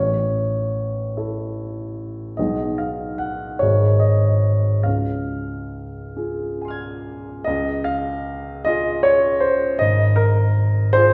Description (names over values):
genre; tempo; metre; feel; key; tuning
classical, impressionist solo piano; 45-54 BPM (dotted quarters); 6/8; rubato; unclear; A4 = 441 Hz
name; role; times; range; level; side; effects
warm baby grand piano; solo; 0.0-11.1 s; Ab1 to Ab6; -21 LUFS; equal; none
room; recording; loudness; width
wet recital hall reverb, RT60 1.4 s; recorded in a church or concert hall; -20 LUFS; mono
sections
0.0-7.4 A section; 7.4-11.1 A section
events
none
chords
0.0 A; 2.4 Cb6; 3.6 Ab5; 4.9 Dbmaj7; 7.4 Db; 9.8 Ab69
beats
1.14 | 2.37 3.60 | 4.86 6.16 | 7.45 8.64 | 9.80 10.94